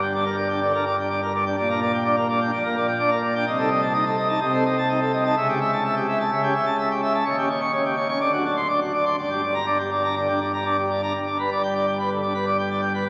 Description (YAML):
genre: classical, organ toccata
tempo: 126 BPM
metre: 4/4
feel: straight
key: G minor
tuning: A4 = 439 Hz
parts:
  - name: pipe organ, plenum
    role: solo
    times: 0.0-13.1 s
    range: D1 to Db6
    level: -23 LUFS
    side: equal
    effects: none
room: wet cathedral reverb, RT60 4.3 s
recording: very old 78 rpm record, vinyl crackle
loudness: -23 LUFS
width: mono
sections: 0.0-11.1 A section; 11.1-13.1 B section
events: none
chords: 0.0 Gm; 1.6 Gm/Bb; 3.5 Adim/C; 5.4 A7/C#; 7.3 Eb7; 8.2 D7; 9.2 Gm; 11.1 G